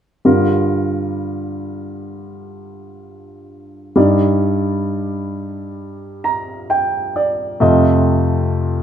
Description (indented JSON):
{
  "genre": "pop",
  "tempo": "66 BPM",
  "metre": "4/4",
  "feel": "straight",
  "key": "G minor",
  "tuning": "A4 = 443 Hz",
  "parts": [
    { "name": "warm concert grand piano", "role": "accompaniment", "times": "0.2-8.8 s", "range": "F2 to Bb5", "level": "-16 LUFS", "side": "equal", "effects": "none" }
  ],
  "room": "moderate large studio reverb, RT60 1.1 s",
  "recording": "band playing live in one room",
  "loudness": "-15 LUFS",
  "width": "side -9 dB against mid",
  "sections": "0.3-8.8 A section",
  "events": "grand piano fill 5.8-7.6",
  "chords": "0.3 Gm7; 4.0 Ebmaj7/G; 7.6 F7"
}